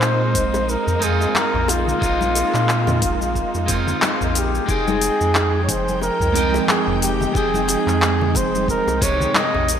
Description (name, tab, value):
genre	sunset chillout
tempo	90 BPM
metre	4/4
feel	swing 57% on 16ths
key	F minor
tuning	A4 = 441 Hz
part	mellow flugelhorn	melody	0.0-9.8 s	F4 to Eb5	-22 LUFS	equal	digital delay
part	electric guitar at the edge of break-up	accompaniment	0.0-9.7 s	C3 to G5	-24 LUFS	moving between left 2 dB and right 9 dB	auto-pan, digital delay
part	rich symphonic string section	sustained chords	0.0-9.8 s	F3 to G5	-27 LUFS	equal	none
part	warm sub bass	bass	0.0-9.8 s	F1 to Bb2	-23 LUFS	equal	none
part	smooth R&B drum kit	drums	0.0-9.8 s	handclaps, hi-hat, shaker, toms	-22 LUFS	equal	gated reverb
part	bongos and congas	percussion	0.0-9.7 s	none	-30 LUFS	left 4 dB	none
part	electronic kick drum	drums	0.3-9.2 s	none	-25 LUFS	equal	none
room	moderate plate reverb, RT60 2.8 s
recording	bright 1980s-style digital production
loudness	-16 LUFS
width	side -8 dB against mid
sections	0.0-9.8 A section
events	none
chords	0.0 Bb7sus4; 4.7 Fm9